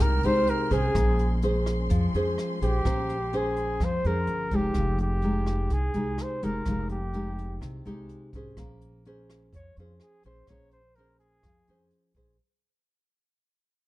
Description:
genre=bossa nova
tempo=126 BPM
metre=4/4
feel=straight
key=unclear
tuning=A4 = 440 Hz
part: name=clear flugelhorn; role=melody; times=0.0-11.9 s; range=F4 to Db5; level=-30 LUFS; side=equal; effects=none
part: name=nylon-string guitar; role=accompaniment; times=0.0-12.4 s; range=C3 to C5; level=-30 LUFS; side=equal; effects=none
part: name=warm symphonic string section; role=sustained chords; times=0.0-4.7 s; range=Ab3 to F6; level=-39 LUFS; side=equal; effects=none
part: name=upright bass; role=bass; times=0.0-12.4 s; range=F1 to F2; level=-28 LUFS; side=equal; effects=none
part: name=jazz brush drum kit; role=drums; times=0.2-12.3 s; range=hi-hat, kick drum, rim click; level=-31 LUFS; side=equal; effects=none
room=little or no reverb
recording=dark, warm production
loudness=-24 LUFS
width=side -17 dB against mid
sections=0.0-12.4 A section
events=fade-out 0.0-12.4; flugelhorn solo 0.0-12.4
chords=0.0 Fm9; 0.9 Bbm9; 4.8 Fm9; 8.6 Bbm9

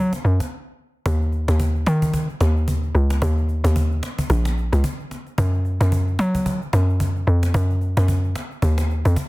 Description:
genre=amapiano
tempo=111 BPM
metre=4/4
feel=swing 58% on 16ths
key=unclear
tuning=A4 = 440 Hz
part: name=hollow log drum bass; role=bass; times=0.0-9.2 s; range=A#1 to F#3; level=-18 LUFS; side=equal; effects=none
part: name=cajon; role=drums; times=0.1-9.3 s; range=none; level=-28 LUFS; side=equal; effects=none
room=studio reverb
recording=dense, heavily limited modern master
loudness=-18 LUFS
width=side -21 dB against mid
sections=0.0-1.1 A section; 1.1-9.3 B section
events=drop 0.0-1.1; break 0.5-1.1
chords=none

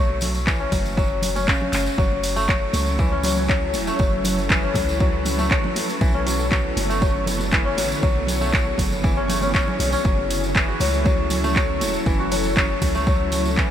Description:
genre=afro house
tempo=119 BPM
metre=4/4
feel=straight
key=F# minor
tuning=A4 = 442 Hz
part: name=kora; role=arpeggios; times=0.0-13.7 s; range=C#3 to F#4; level=-24 LUFS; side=left 3 dB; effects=sidechain pumping, analog delay
part: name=warm 808-style bass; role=bass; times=0.0-13.6 s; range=E1 to C#2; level=-26 LUFS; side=equal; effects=sidechain pumping
part: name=congas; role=percussion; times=0.1-13.6 s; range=none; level=-31 LUFS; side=right 2 dB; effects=none
part: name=afro-pop drum kit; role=drums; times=0.2-13.7 s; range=handclaps, hi-hat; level=-26 LUFS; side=equal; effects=none
part: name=tambourine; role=percussion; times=0.2-13.7 s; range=none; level=-33 LUFS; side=right 2 dB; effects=none
part: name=electronic kick drum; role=drums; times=0.5-13.7 s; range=none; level=-21 LUFS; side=equal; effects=overdrive
part: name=ethereal airy pad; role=sustained chords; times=2.4-13.7 s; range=D3 to C#5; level=-27 LUFS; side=right 1 dB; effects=ensemble chorus, built-in reverb, sidechain pumping
room=moderate huge ambient reverb, RT60 7.5 s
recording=dreamy mix soaked in reverb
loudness=-18 LUFS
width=side -10 dB against mid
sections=0.0-13.7 A section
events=none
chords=0.0 B9sus4; 2.0 F#m7; 6.0 Bm11; 10.0 F#m7

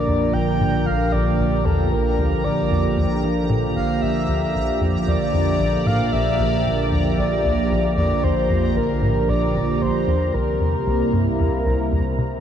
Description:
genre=ambient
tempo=114 BPM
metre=4/4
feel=straight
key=Bb lydian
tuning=A4 = 439 Hz
part: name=breathy flute-like synth lead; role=melody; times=0.0-12.2 s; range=A4 to G5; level=-24 LUFS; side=left 1 dB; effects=tremolo, wide subtle chorus, tape echo
part: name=sweeping resonant pad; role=sustained chords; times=0.0-12.4 s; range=C3 to D5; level=-22 LUFS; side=right 2 dB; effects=chorus
part: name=analog drone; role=bass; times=0.0-12.4 s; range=Bb1 to C2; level=-26 LUFS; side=left 1 dB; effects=chorus, phaser, tube saturation
part: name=bubbling stepped-filter texture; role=texture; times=0.0-12.4 s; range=Bb5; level=-34 LUFS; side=right 2 dB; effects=chorus, built-in reverb
part: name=tight sequencer bass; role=riff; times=0.1-12.3 s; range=Bb1 to F3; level=-24 LUFS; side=left 1 dB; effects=ensemble chorus, tape echo
room=moderate huge ambient reverb, RT60 8.6 s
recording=none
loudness=-18 LUFS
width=side -9 dB against mid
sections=0.0-12.4 A section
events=none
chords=0.0 Bb; 10.3 C7

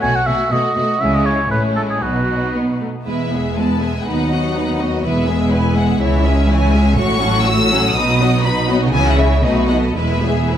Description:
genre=quick classical-period movement for symphony orchestra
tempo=110-125 BPM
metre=2/4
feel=rubato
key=E major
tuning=A4 = 441 Hz
part: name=rich studio violin section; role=melody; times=0.0-10.5 s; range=D#4 to E6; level=-23 LUFS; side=left 2 dB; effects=none
part: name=clear symphonic violin section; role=second line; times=0.0-10.6 s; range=B3 to F#5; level=-24 LUFS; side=left 2 dB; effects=none
part: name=warm oboe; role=second line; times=0.0-2.6 s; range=F#4 to G#5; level=-19 LUFS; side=right 1 dB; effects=none
part: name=rich chamber viola section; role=accompaniment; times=0.0-10.6 s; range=E3 to G#4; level=-21 LUFS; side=equal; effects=none
part: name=rich chamber double bass section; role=bass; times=0.0-10.6 s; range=E1 to D#2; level=-20 LUFS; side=right 2 dB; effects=none
part: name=rich symphonic cello section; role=bass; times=0.0-10.6 s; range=C#2 to C#3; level=-22 LUFS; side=right 1 dB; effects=none
part: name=mellow French horn section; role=sustained chords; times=3.1-10.3 s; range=F#3 to E4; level=-23 LUFS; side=left 4 dB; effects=none
room=wet recital hall reverb, RT60 1.6 s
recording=none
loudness=-14 LUFS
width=side -10 dB against mid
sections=0.0-3.1 A section; 3.1-10.6 B section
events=none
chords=0.0 B7; 1.0 C#m; 1.5 A; 2.0 B; 3.1 E; 4.1 B/D#; 5.0 E; 6.0 C#m; 7.0 F#m/A; 8.0 B; 8.9 C#m; 9.4 B7; 10.0 E

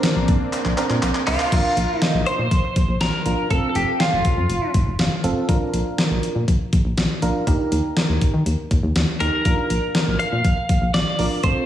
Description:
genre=synth-pop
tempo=121 BPM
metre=4/4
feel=straight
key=Bb major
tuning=A4 = 441 Hz
part: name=FM electric piano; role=accompaniment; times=0.0-11.7 s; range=C4 to F5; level=-26 LUFS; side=right 3 dB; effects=chorus, slapback echo
part: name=phased analog pad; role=sustained chords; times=0.0-1.5 s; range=Bb3 to D4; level=-30 LUFS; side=left 2 dB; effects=phaser, chorus
part: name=clean 12-bit digital drum machine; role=drums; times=0.0-11.6 s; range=crash cymbal, handclaps, hi-hat, kick drum, snare drum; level=-21 LUFS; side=equal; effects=none
part: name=solid FM bass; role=bass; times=0.2-11.5 s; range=F1 to Eb3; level=-22 LUFS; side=equal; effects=none
part: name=twelve-string electric guitar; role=melody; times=1.3-4.7, 9.2-11.7 s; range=F4 to F5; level=-22 LUFS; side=equal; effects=phaser, digital delay, slapback echo
room=moderate lush hall reverb, RT60 1.9 s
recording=big arena sound, studio reverb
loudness=-18 LUFS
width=side -11 dB against mid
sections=0.0-1.5 A section; 1.5-11.7 B section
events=drum fill 0.5-1.5; FM electric piano fill 4.7-5.5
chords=0.0 Bbadd9; 1.5 Bb; 3.5 F; 5.5 Bb; 7.5 Eb; 9.5 Bb

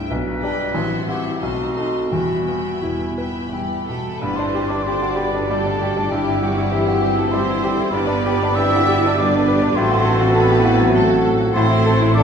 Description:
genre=classical, romantic movement for piano and orchestra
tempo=83-103 BPM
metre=3/4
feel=rubato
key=E minor, G major from 4.2 s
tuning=A4 = 440 Hz
part: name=bright baby grand piano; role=melody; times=0.0-12.2 s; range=A1 to B4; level=-21 LUFS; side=left 1 dB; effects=none
part: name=rich studio violin section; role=melody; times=0.0-12.2 s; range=A4 to C6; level=-33 LUFS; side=left 2 dB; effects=none
part: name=rich studio violin section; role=second line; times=0.0-12.2 s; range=E4 to A5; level=-29 LUFS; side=left 2 dB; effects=none
part: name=rich studio viola section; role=accompaniment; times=0.0-12.2 s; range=A3 to A4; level=-26 LUFS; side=right 1 dB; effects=none
part: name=mellow French horn section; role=sustained chords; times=0.0-12.2 s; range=F#3 to G4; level=-28 LUFS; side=left 4 dB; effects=none
part: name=warm clarinet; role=second line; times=0.1-12.2 s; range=E4 to B4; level=-27 LUFS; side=left 1 dB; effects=none
part: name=rich studio cello section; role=bass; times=0.1-12.2 s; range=E2 to E4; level=-27 LUFS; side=right 3 dB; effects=none
part: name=rich studio double bass section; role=bass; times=0.1-12.2 s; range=E1 to B1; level=-24 LUFS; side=right 2 dB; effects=none
part: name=mellow hollow silver concert flute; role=second line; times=3.5-12.2 s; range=E5 to E6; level=-25 LUFS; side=equal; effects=none
part: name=warm oboe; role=second line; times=4.2-12.2 s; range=A4 to E5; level=-30 LUFS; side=right 1 dB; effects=none
part: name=dark bassoon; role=accompaniment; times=4.2-12.2 s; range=G3 to A3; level=-28 LUFS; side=right 2 dB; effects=none
part: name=bright trombone section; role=sustained chords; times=4.2-12.2 s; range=A2 to A3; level=-29 LUFS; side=right 1 dB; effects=none
room=wet recital hall reverb, RT60 1.7 s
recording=recorded in a church or concert hall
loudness=-16 LUFS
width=side -7 dB against mid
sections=0.0-4.2 A section; 4.2-12.2 B section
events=none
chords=0.1 G/B; 0.7 F#m7b5/A; 1.4 B7b9; 2.1 Em; 4.2 G; 6.1 C/G; 7.9 G; 9.8 F#dim/A; 11.6 Am

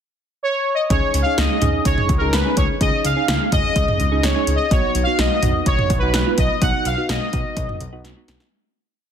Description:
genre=synth-pop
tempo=126 BPM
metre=4/4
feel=straight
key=Db mixolydian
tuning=A4 = 440 Hz
part: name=analog synth brass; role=melody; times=0.4-8.0 s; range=Bb4 to Gb5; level=-21 LUFS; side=equal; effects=chorus
part: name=soft electric-piano-like synth keys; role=accompaniment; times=0.9-8.5 s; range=Cb4 to Ab4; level=-25 LUFS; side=right 2 dB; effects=chorus, phaser
part: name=smooth synth bass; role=bass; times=0.9-8.4 s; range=Cb2 to Db2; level=-23 LUFS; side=equal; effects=none
part: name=deep house drum kit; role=drums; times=0.9-8.5 s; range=hi-hat, kick drum, snare drum, toms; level=-21 LUFS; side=equal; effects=overdrive
room=light reverb, digital ambience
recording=dense, heavily limited modern master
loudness=-16 LUFS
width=side -8 dB against mid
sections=0.0-0.9 pickup bar; 0.9-8.5 verse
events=fade-out 6.6-8.5; drum fill 8.0-8.5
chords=0.0 N.C.; 0.9 Dbsus2; 4.7 Cb

